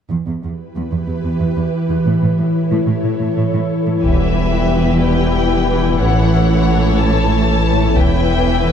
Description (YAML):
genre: cinematic, hybrid orchestral and electronic film score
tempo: 61 BPM (dotted quarters)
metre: 6/8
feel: straight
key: E dorian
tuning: A4 = 441 Hz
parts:
  - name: ethereal airy pad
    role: sustained chords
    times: 0.8-8.7 s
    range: E3 to E5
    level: -18 LUFS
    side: equal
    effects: ensemble chorus, built-in reverb
  - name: warm studio cello section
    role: bass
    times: 0.1-8.7 s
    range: E2 to A2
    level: -19 LUFS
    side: right 4 dB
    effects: none
  - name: warm symphonic violin section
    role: melody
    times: 4.0-8.7 s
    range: E5 to A5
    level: -22 LUFS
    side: left 6 dB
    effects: none
  - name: rich symphonic violin section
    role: second line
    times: 4.0-8.7 s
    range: G4 to E5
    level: -23 LUFS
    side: left 4 dB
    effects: none
  - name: warm symphonic viola section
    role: accompaniment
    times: 4.0-8.7 s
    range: E3 to E4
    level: -23 LUFS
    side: right 1 dB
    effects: none
  - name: saturated sub bass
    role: bass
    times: 4.0-8.7 s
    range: E1 to A1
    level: -18 LUFS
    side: equal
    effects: none
  - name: taiko ensemble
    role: drums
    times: 4.0-8.7 s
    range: none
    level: -20 LUFS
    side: left 1 dB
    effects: none
  - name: mellow French horn section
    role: sustained chords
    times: 4.1-8.7 s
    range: E3 to C#4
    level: -22 LUFS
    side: left 4 dB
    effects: none
room: wet scoring stage reverb, RT60 1.6 s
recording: dark, warm production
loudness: -13 LUFS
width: side -8 dB against mid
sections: 0.1-4.0 A section; 4.0-8.7 B section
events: none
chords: 0.1 Em; 2.1 A; 4.0 Em; 6.0 A; 8.0 Em